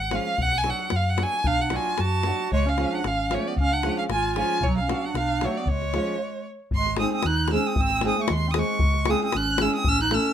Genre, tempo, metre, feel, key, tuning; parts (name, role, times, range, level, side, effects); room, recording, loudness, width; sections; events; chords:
balkan folk, Balkan wedding band; 114 BPM; 2/4; swing 53% on 16ths; C# phrygian dominant, G# phrygian dominant from 6.7 s; A4 = 444 Hz
warm violin; melody; 0.0-10.3 s; C#5 to F#6; -26 LUFS; equal
hollow-body short-scale fingered electric bass; bass; 0.0-10.2 s; G#1 to F#2; -27 LUFS; equal
nylon-string guitar; accompaniment; 0.1-10.3 s; E#3 to A4; -28 LUFS; equal
davul; percussion; 0.1-10.2 s; -28 LUFS; left 3 dB
warm clarinet; second line; 1.5-10.3 s; F#3 to F#4; -29 LUFS; right 5 dB
light reverb; minimal, uncompressed stereo recording; -21 LUFS; side -9 dB against mid
0.0-6.7 A section; 6.7-10.3 B section
stop 6.2-6.7
0.4 Bm; 2.5 C#; 4.6 Bm; 5.7 C#; 6.2 N.C.; 6.7 G#; 8.8 C#m